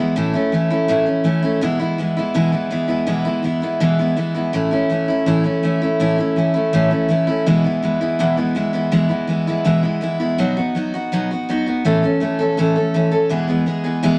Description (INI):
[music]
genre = rock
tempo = 164 BPM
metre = 4/4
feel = straight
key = E major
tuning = A4 = 439 Hz
[part]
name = picked steel-string acoustic guitar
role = solo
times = 0.0-14.2 s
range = E2 to A4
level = -18 LUFS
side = equal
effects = none
[sound]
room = moderate studio reverb, RT60 0.6 s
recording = vinyl crackle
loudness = -19 LUFS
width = mono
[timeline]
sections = 0.0-14.2 A section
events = none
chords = 0.2 A; 1.6 E; 4.5 A; 7.5 E; 10.4 B; 11.8 A; 13.3 E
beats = | 0.16 0.52 0.89 1.25 | 1.62 1.99 2.35 2.72 | 3.08 3.45 3.81 4.18 | 4.55 4.91 5.28 5.64 | 6.01 6.38 6.74 7.11 | 7.47 7.84 8.20 8.57 | 8.93 9.30 9.66 10.03 | 10.39 10.76 11.12 11.48 | 11.85 12.21 12.58 12.94 | 13.30 13.67 14.03